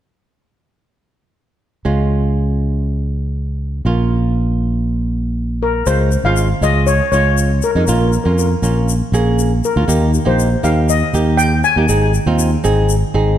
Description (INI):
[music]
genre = calypso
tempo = 120 BPM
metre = 4/4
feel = straight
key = Db major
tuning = A4 = 440 Hz
[part]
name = flamenco guitar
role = accompaniment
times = 1.8-13.4 s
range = Ab3 to Ab4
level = -21 LUFS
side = right 3 dB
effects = none
[part]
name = fingered electric bass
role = bass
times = 1.9-13.4 s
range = Ab1 to F2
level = -15 LUFS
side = equal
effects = none
[part]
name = steel pan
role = melody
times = 5.6-12.6 s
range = Bb4 to Ab5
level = -18 LUFS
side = left 4 dB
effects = digital delay
[part]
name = egg shaker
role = percussion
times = 5.9-13.0 s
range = none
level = -28 LUFS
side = left 8 dB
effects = none
[sound]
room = light reverb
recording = dark, warm production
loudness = -13 LUFS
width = side -11 dB against mid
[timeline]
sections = 1.8-5.9 A section; 5.9-13.4 B section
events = none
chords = 1.8 Db; 3.9 Bbm; 5.9 Db; 7.9 Bbm; 9.9 Eb; 11.9 Ab